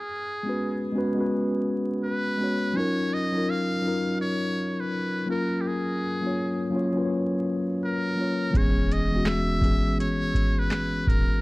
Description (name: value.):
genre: lo-fi hip hop.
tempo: 83 BPM.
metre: 4/4.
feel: swing 62% on 16ths.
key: unclear.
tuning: A4 = 439 Hz.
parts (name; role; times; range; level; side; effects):
trumpet with metal mute; melody; 0.0-11.4 s; G4 to E#5; -31 LUFS; equal; analog delay, plate reverb.
mellow tine electric piano; accompaniment; 0.4-11.4 s; E3 to C#5; -25 LUFS; left 1 dB; slow stereo tremolo, cassette tape, plate reverb.
warm sub bass; bass; 8.5-11.3 s; D#1 to E1; -29 LUFS; equal; none.
booming analog drum machine; drums; 8.5-11.3 s; handclaps, hi-hat, kick drum, snare drum; -24 LUFS; equal; none.
finger snap; percussion; 9.3-10.9 s; none; -42 LUFS; right 7 dB; none.
room: light reverb.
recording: worn, warbling old tape, cassette tape, vinyl crackle, warbly pitch drift.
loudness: -23 LUFS.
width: side -21 dB against mid.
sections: 0.0-11.4 A section.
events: none.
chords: 0.0 C#7sus4; 2.8 D#m9; 5.3 F#maj7; 8.5 E6.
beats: 0.59 1.31 2.04 | 2.76 3.48 4.20 4.93 | 5.65 6.37 7.09 7.82 | 8.54 9.26 9.99 10.71.